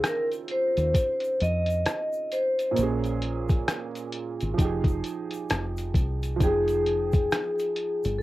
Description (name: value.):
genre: lo-fi hip hop.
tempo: 66 BPM.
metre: 4/4.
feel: swing 60% on 16ths.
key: F minor.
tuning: A4 = 439 Hz.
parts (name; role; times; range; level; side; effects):
warm upright piano; accompaniment; 0.0-8.2 s; Bb2 to G5; -32 LUFS; right 6 dB; cassette tape, low-pass filter.
lo-fi sampler-style drum kit; drums; 0.0-8.2 s; hi-hat, kick drum, rim click; -26 LUFS; equal; cassette tape.
egg shaker; percussion; 0.0-8.2 s; none; -50 LUFS; left 8 dB; none.
vibraphone with medium hard mallets; melody; 0.1-8.2 s; Ab4 to Eb5; -26 LUFS; left 1 dB; low-pass filter.
deep dub fingered electric bass; bass; 0.8-8.2 s; F1 to F2; -29 LUFS; equal; none.
room: moderate booth ambience, RT60 0.2 s.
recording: home recording on cassette.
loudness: -24 LUFS.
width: side -17 dB against mid.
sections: 0.0-6.4 A section; 6.4-8.2 A section.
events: none.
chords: 0.0 Dbmaj9; 2.8 Bbm7; 4.6 Fm9.